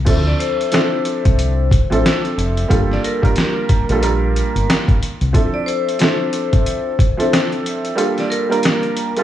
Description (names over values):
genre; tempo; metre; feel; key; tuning
hip hop, boom-bap hip-hop; 91 BPM; 4/4; swing 61% on 16ths; unclear; A4 = 442 Hz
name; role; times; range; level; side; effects
warm upright piano; accompaniment; 0.0-9.2 s; F3 to Bb4; -20 LUFS; right 2 dB; high-pass filter, low-pass filter
deep dub fingered electric bass; bass; 0.0-5.3 s; F1 to D2; -18 LUFS; equal; none
trip hop sampler-style drum kit; drums; 0.1-9.2 s; crash cymbal, hi-hat, kick drum, snare drum; -17 LUFS; equal; none
vibraphone with hard mallets; melody; 0.3-9.2 s; Bb4 to D5; -23 LUFS; left 5 dB; high-pass filter, low-pass filter
room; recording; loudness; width
light reverb, small room ambience; vinyl crackle, studio reverb; -14 LUFS; side -12 dB against mid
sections
0.1-9.2 A section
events
kick muted 8.0-9.2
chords
0.1 Dm7; 2.7 Gm7; 5.3 Dm7; 8.0 Gm7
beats
| 0.07 0.72 1.39 2.04 | 2.70 3.36 4.02 4.68 | 5.34 6.00 6.66 7.32 | 7.98 8.64